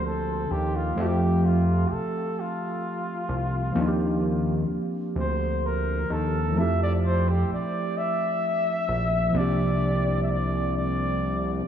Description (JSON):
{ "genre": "slow six-eight R&B", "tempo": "43 BPM (dotted quarters)", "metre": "6/8", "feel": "straight", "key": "F major", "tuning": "A4 = 440 Hz", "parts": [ { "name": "breathy flugelhorn", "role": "melody", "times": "0.0-11.6 s", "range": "F4 to E5", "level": "-28 LUFS", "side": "left 1 dB", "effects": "analog delay" }, { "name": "tine electric piano", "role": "accompaniment", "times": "0.0-11.7 s", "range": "F3 to E5", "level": "-28 LUFS", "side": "right 1 dB", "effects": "medium stereo tremolo" }, { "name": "fat analog bass", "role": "bass", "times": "0.0-11.6 s", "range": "Bb1 to F2", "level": "-25 LUFS", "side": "equal", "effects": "none" } ], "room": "moderate huge ambient reverb, RT60 3.8 s", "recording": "dreamy mix soaked in reverb, small room ambience", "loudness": "-23 LUFS", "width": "side -9 dB against mid", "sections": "0.0-9.3 A section; 9.3-11.7 B section", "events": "flugelhorn solo 0.0-9.3", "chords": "0.0 Ebmaj13; 1.0 Fmaj7; 3.8 Ebmaj13; 6.5 Fmaj7; 9.3 C9sus4" }